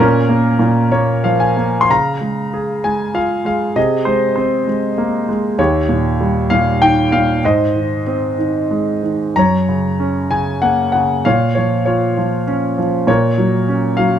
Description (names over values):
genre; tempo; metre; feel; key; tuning
classical, lyrical solo piano; 97 BPM; 3/4; uneven beats, rubato; Db major; A4 = 440 Hz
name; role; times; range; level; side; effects
warm concert grand piano; solo; 0.0-14.2 s; Eb2 to C6; -13 LUFS; equal; none
room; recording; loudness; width
light reverb; close, detailed microphones; -13 LUFS; side -9 dB against mid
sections
0.0-1.9 A section; 1.9-14.2 B section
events
grand piano fill 0.6-1.9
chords
0.0 Bbm; 1.9 Db; 3.8 Abadd9/C; 5.6 Eb7; 7.4 Ab; 9.4 Gb; 11.3 Bbm; 13.1 Gb/Bb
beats
0.60 1.24 | 1.90 2.54 3.16 | 3.76 4.37 4.98 | 5.59 6.20 6.82 | 7.43 8.06 8.71 | 9.35 9.99 10.63 | 11.25 11.87 12.48 | 13.08 13.69